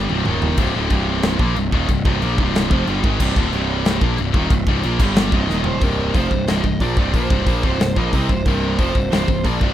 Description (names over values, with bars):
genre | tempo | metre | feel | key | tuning
heavy metal | 183 BPM | 4/4 | straight | C minor | A4 = 442 Hz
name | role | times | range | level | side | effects
distorted electric guitar | riff | 0.0-9.7 s | C2 to C4 | -25 LUFS | right 12 dB | distortion
heavy high-gain guitar | riff | 0.0-9.7 s | C2 to C4 | -24 LUFS | left 13 dB | distortion
fuzz picked electric bass | bass | 0.0-9.7 s | C1 to C2 | -21 LUFS | equal | overdrive
modern studio drum kit | drums | 0.1-9.7 s | china cymbal, crash cymbal, hi-hat, kick drum, snare drum, toms | -20 LUFS | equal | none
high-gain lead guitar | melody | 5.3-9.7 s | Bb4 to Eb5 | -26 LUFS | right 4 dB | distortion
room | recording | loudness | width
little or no reverb | rough home demo mix | -16 LUFS | side -12 dB against mid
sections
0.0-5.8 A section; 5.8-9.7 B section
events
drum fill 0.0-0.6, 5.5-5.8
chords
0.1 C5; 0.3 Eb5; 0.6 Cm; 5.0 G5; 5.3 Cm; 5.5 Eb5; 5.8 C5